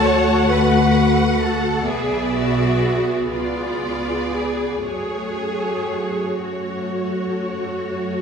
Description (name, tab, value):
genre	classical, slow romantic movement for string orchestra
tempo	37-44 BPM (dotted quarters)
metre	12/8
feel	rubato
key	F# minor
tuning	A4 = 440 Hz
part	warm symphonic violin section	melody	0.0-8.2 s	C#5 to F#5	-28 LUFS	left 4 dB	none
part	warm symphonic violin section	second line	0.0-8.2 s	C#5 to A5	-28 LUFS	left 1 dB	none
part	warm studio viola section	accompaniment	0.0-8.2 s	A3 to G#4	-23 LUFS	equal	none
part	warm symphonic cello section	bass	0.0-8.2 s	E#4 to C#5	-24 LUFS	right 1 dB	none
part	warm symphonic double bass section	bass	0.0-8.2 s	B1 to F#2	-23 LUFS	left 1 dB	none
room	wet scoring stage reverb, RT60 1.9 s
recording	heard from further back in the room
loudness	-18 LUFS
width	side -6 dB against mid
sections	0.0-8.2 A section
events	none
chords	0.0 D; 1.9 G#m7b5/B; 3.3 C#7b9; 4.8 F#m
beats	0.48 1.86 3.29 | 4.84 6.43 8.00